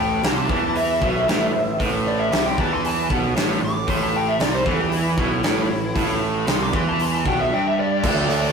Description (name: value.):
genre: hard rock.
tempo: 115 BPM.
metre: 4/4.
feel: straight.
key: A minor.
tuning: A4 = 439 Hz.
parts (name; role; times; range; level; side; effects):
dark smooth lead guitar; melody; 0.0-8.5 s; E4 to D6; -24 LUFS; left 1 dB; overdrive.
crunchy overdriven guitar; riff; 0.0-8.5 s; G2 to D4; -25 LUFS; right 6 dB; none.
distorted electric guitar; riff; 0.0-8.5 s; G2 to D4; -27 LUFS; left 4 dB; distortion.
fuzz picked electric bass; bass; 0.0-8.5 s; A1 to E2; -27 LUFS; equal; overdrive.
huge arena drum kit; drums; 0.2-8.4 s; crash cymbal, hi-hat, kick drum, snare drum; -24 LUFS; equal; none.
room: moderate studio reverb, RT60 0.7 s.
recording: rough rehearsal-room recording, warm saturation.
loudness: -18 LUFS.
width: side -6 dB against mid.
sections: 0.0-8.0 A section.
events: lead electric guitar solo 0.0-8.0.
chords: 0.0 Am.